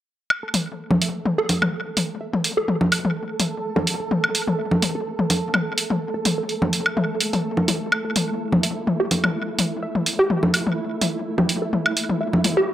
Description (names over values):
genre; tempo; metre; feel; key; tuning
minimal techno; 126 BPM; 4/4; swing 53% on 16ths; unclear; A4 = 441 Hz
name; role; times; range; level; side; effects
electronic woodblock, toms and congas; percussion; 0.3-12.5 s; none; -22 LUFS; left 1 dB; tape echo
flickering grainy texture; texture; 0.6-12.7 s; A3 to A4; -28 LUFS; right 2 dB; built-in reverb
resonant blip pluck; riff; 0.4-12.6 s; E4 to A5; -25 LUFS; right 1 dB; phaser, tape echo
electronic hi-hat; drums; 0.5-12.5 s; none; -23 LUFS; right 2 dB; none
room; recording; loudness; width
moderate digital room reverb, RT60 1.2 s; dry, gritty hardware recording; -20 LUFS; side -12 dB against mid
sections
0.3-12.7 A section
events
filter sweep on synth arpeggio sound 0.3-12.7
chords
0.3 A5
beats
| 0.30 0.78 1.25 1.73 | 2.21 2.68 3.16 3.63 | 4.11 4.59 5.06 5.54 | 6.02 6.49 6.97 7.44 | 7.92 8.40 8.87 9.35 | 9.82 10.30 10.78 11.25 | 11.73 12.21 12.68